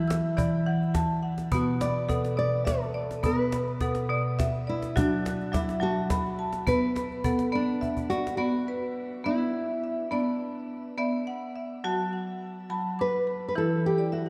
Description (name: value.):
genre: world meditative, meditative tuned percussion.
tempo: 70 BPM (dotted quarters).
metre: 6/8.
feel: straight.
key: B minor pentatonic.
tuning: A4 = 440 Hz.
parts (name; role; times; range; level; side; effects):
nylon-string guitar; melody; 0.0-14.3 s; D4 to D5; -33 LUFS; equal; shimmer reverb, tape echo.
marimba with hard mallets; arpeggios; 0.0-14.3 s; B2 to F#6; -30 LUFS; equal; shimmer reverb.
cajon; percussion; 0.1-8.4 s; none; -35 LUFS; equal; none.
room: wet echo chamber reverb, RT60 2.5 s.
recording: dark, warm production.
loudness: -28 LUFS.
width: mono.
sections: 0.0-8.4 A section; 8.4-14.3 B section.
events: drum fill 7.8-8.4; marimba fill 14.0-14.3.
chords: 0.0 E5; 1.5 Bm; 5.0 F#m; 6.7 Bm; 11.8 F#m; 13.6 E5.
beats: 0.66 | 1.52 2.38 | 3.24 4.10 | 4.96 5.82 | 6.68 7.54 | 8.40 9.26 | 10.12 10.98 | 11.84 12.70 | 13.56.